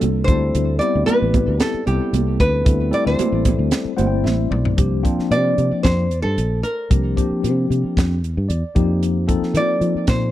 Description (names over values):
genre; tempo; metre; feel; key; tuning
electric jazz fusion; 113 BPM; 4/4; straight; C mixolydian; A4 = 439 Hz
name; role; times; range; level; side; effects
nylon-string guitar; melody; 0.0-10.3 s; G4 to D5; -22 LUFS; equal; tape echo
tine electric piano; accompaniment; 0.0-10.3 s; F3 to G5; -22 LUFS; left 4 dB; medium stereo tremolo, wide subtle chorus
fingered electric bass; bass; 0.0-10.3 s; G1 to F3; -20 LUFS; equal; none
crisp fusion drum kit; drums; 0.0-10.2 s; hi-hat, kick drum, snare drum, toms; -20 LUFS; equal; none
congas; percussion; 0.0-4.4 s; none; -24 LUFS; right 7 dB; none
room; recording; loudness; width
little or no reverb; dry, close 1970s-style studio recording; -16 LUFS; side -14 dB against mid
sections
0.0-4.8 A section; 4.8-10.3 B section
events
tine electric piano fill 3.7-4.8, 8.2-9.0; drum fill 4.3-4.8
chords
0.3 D13sus4; 4.8 C9sus4; 8.8 F9sus4